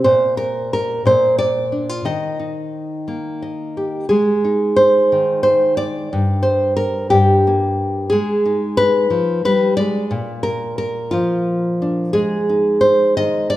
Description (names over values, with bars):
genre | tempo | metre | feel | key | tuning
folk, solo fingerstyle acoustic guitar | 59 BPM (dotted quarters) | 6/8 | straight | unclear | A4 = 440 Hz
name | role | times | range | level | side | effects
nylon-string guitar | solo | 0.0-13.6 s | G2 to Eb5 | -15 LUFS | equal | none
room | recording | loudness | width
wet recital hall reverb, RT60 1.7 s | recorded in a church or concert hall | -15 LUFS | side -15 dB against mid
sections
0.0-4.1 A section; 4.1-13.6 B section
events
none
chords
0.0 N.C.; 1.0 Bb; 2.0 Eb; 4.1 Ab; 6.1 Gmadd11; 8.1 Abm; 10.1 Bb; 12.2 Ab5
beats
| 0.04 1.04 | 2.04 3.06 | 4.08 5.11 | 6.12 7.12 | 8.11 9.11 | 10.12 11.14 | 12.16 13.18